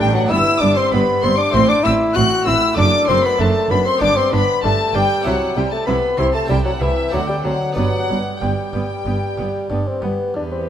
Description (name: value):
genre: classical, baroque-style concerto movement with solo episodes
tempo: 96 BPM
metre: 4/4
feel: straight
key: G major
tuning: A4 = 443 Hz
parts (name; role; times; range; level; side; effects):
- mellow bassoon; melody; 0.0-10.7 s; E3 to F#4; -19 LUFS; left 2 dB; none
- rich chamber violin section; melody; 0.0-10.7 s; B4 to F#6; -24 LUFS; left 6 dB; none
- warm chamber violin section; second line; 0.0-10.7 s; B4 to F#6; -24 LUFS; equal; none
- harpsichord; accompaniment; 0.0-10.7 s; E2 to E5; -26 LUFS; right 1 dB; none
- warm chamber viola section; accompaniment; 0.0-10.7 s; B3 to G4; -28 LUFS; right 1 dB; none
- dark chamber cello section; bass; 0.0-10.7 s; E2 to D3; -23 LUFS; right 3 dB; none
- rich chamber double bass section; bass; 0.0-10.1 s; F#1 to D2; -23 LUFS; right 3 dB; none
room: moderate recital hall reverb, RT60 1.7 s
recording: none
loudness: -15 LUFS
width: side -9 dB against mid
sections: 0.0-10.3 A section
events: none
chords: 0.3 Em/G; 1.5 Am; 2.8 D/F#; 4.0 G; 5.3 C; 6.5 Am/C; 7.1 D7; 7.8 G